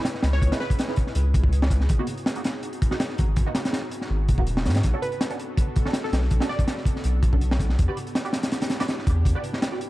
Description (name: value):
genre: drum and bass, jungle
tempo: 163 BPM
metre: 4/4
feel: straight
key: C# minor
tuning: A4 = 440 Hz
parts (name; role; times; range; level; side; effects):
- airy breathy pad; sustained chords; 0.0-9.9 s; B3 to B4; -35 LUFS; equal; chorus
- crunchy breakbeat drum kit; drums; 0.0-9.9 s; hi-hat, kick drum, snare drum; -24 LUFS; equal; none
- saturated sub bass; bass; 0.2-9.3 s; D#1 to G#2; -22 LUFS; equal; none
- glassy wavetable pluck; melody; 0.3-0.9, 5.0-6.9 s; A4 to D5; -35 LUFS; equal; chorus, dub echo
- filtered dub chord stab; stabs; 0.5-9.8 s; A#3 to D5; -34 LUFS; right 3 dB; phaser, ensemble chorus, cassette tape, dub echo
room: little or no reverb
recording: dark, warm production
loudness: -21 LUFS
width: side -17 dB against mid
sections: 0.0-9.9 A section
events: none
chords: 0.0 C#m7; 1.9 G#m7; 4.8 Bm7; 7.8 Em7